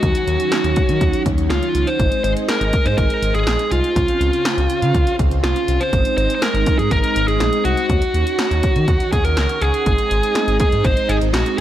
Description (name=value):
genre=synth-pop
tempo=122 BPM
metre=4/4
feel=straight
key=Ab mixolydian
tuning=A4 = 441 Hz
part: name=dark smooth lead guitar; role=melody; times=0.0-11.6 s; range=F4 to C5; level=-19 LUFS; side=right 1 dB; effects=overdrive
part: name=ensemble organ-string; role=sustained chords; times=0.0-11.6 s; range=Db3 to Gb4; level=-24 LUFS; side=right 1 dB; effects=phaser, ensemble chorus
part: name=smooth gliding synth bass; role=bass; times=0.0-11.4 s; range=Ab1 to Eb3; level=-20 LUFS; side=equal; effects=none
part: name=punchy analog drum machine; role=drums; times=0.0-11.6 s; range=hi-hat, kick drum, snare drum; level=-20 LUFS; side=equal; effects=none
room=light reverb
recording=none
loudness=-15 LUFS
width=side -12 dB against mid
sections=0.0-11.6 A section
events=none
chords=0.0 Ebm7; 2.0 Ab; 4.0 Dbmaj7; 5.9 Ab; 7.9 Ebm7; 9.9 Ab